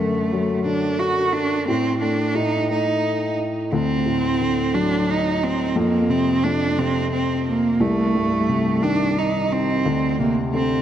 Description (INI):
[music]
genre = pop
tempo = 59 BPM (dotted quarters)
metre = 6/8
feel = straight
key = unclear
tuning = A4 = 440 Hz
[part]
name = warm cello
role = melody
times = 0.0-10.8 s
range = A3 to F#4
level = -21 LUFS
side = right 2 dB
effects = tape echo
[part]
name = dark upright piano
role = accompaniment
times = 0.0-10.8 s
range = C2 to A3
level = -22 LUFS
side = left 2 dB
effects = tape echo
[sound]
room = moderate spring reverb, RT60 2.1 s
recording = echo-heavy mix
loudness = -18 LUFS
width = side -10 dB against mid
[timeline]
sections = 0.0-10.8 A section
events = none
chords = 0.0 D/F#; 1.7 N.C.; 3.7 D7; 5.8 F5; 7.8 Cm; 9.8 D7(no3)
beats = 0.66 | 1.68 2.70 | 3.72 4.75 | 5.77 6.79 | 7.81 8.83 | 9.85